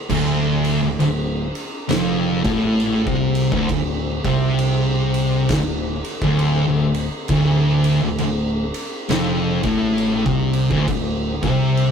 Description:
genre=stoner and doom metal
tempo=67 BPM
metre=4/4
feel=swing 62% on 8ths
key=D minor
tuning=A4 = 441 Hz
part: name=thick fuzz guitar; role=riff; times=0.1-11.9 s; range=D2 to C3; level=-18 LUFS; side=equal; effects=distortion
part: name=modern bright picked electric bass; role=bass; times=0.1-11.9 s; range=D1 to C2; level=-27 LUFS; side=left 1 dB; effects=tube saturation
part: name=oversized low-tuned drum kit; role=drums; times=0.1-11.9 s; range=crash cymbal, kick drum, ride cymbal, snare drum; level=-26 LUFS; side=equal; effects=none
room=moderate stone room reverb, RT60 1.2 s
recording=rough rehearsal-room recording, tube saturation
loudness=-17 LUFS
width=side -7 dB against mid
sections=0.0-11.9 A section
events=none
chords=0.0 Dm

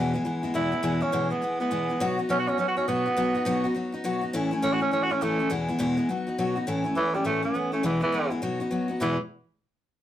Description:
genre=rock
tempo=206 BPM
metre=4/4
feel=swing 62% on 8ths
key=E major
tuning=A4 = 440 Hz
part: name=picked steel-string acoustic guitar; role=accompaniment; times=0.0-9.2 s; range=E2 to F#4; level=-26 LUFS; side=left 2 dB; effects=none
part: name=raspy tenor saxophone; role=melody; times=0.6-9.2 s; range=E3 to F#4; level=-26 LUFS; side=right 2 dB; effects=none
room=moderate studio reverb, RT60 0.5 s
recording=rough rehearsal-room recording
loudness=-24 LUFS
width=side -12 dB against mid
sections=0.0-6.7 A section; 6.7-9.0 B section; 9.0-10.0 C section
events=none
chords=0.0 E; 2.0 B; 4.3 A; 5.5 E; 6.1 B; 6.7 A; 7.8 E; 8.4 B; 9.0 E

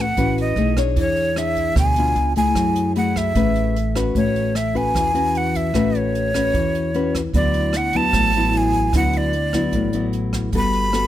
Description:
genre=bossa nova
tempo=151 BPM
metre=4/4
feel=straight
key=A major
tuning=A4 = 439 Hz
part: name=breathy bright jazz flute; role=melody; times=0.0-11.1 s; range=C#5 to B5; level=-21 LUFS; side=right 2 dB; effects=none
part: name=nylon-string guitar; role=accompaniment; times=0.0-11.1 s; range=A2 to C#5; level=-21 LUFS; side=left 4 dB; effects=none
part: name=upright bass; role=bass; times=0.0-11.1 s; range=G1 to F#2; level=-23 LUFS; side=right 1 dB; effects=none
part: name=jazz brush drum kit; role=drums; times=0.2-11.0 s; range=hi-hat, kick drum, rim click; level=-28 LUFS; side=right 2 dB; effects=none
room=little or no reverb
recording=close, detailed microphones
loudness=-17 LUFS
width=side -12 dB against mid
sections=0.0-4.1 A section; 4.1-11.1 A section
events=none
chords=0.0 A69; 0.6 B13; 1.0 E6; 2.2 C#7b9; 2.6 F#m9; 3.4 Amaj9; 4.1 A69; 7.3 D69; 10.5 Gmaj9

